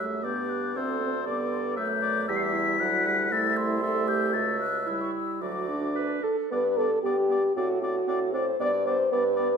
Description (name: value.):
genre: quick classical-period movement for wind quintet.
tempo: 116 BPM.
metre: 2/4.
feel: rubato.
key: G major.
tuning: A4 = 440 Hz.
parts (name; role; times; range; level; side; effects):
mellow hollow concert flute; melody; 0.0-9.4 s; D5 to C7; -30 LUFS; left 7 dB; none.
warm oboe; second line; 0.0-9.5 s; C5 to F#5; -33 LUFS; left 2 dB; none.
clear clarinet; accompaniment; 0.0-9.5 s; B3 to B4; -34 LUFS; right 7 dB; none.
mellow French horn; accompaniment; 0.0-9.6 s; F#3 to D5; -28 LUFS; equal; none.
warm bassoon; bass; 0.0-9.6 s; C2 to A2; -32 LUFS; right 2 dB; none.
room: wet recital hall reverb, RT60 1.5 s.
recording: minimal, uncompressed stereo recording.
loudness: -24 LUFS.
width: side -6 dB against mid.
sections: 0.0-6.5 A section; 6.5-9.6 B section.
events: none.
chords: 0.2 G; 0.8 D5; 1.3 G; 2.3 Em; 3.3 Am/C; 4.3 A7/C#; 5.4 D; 6.5 G; 7.6 D7/A; 8.6 G.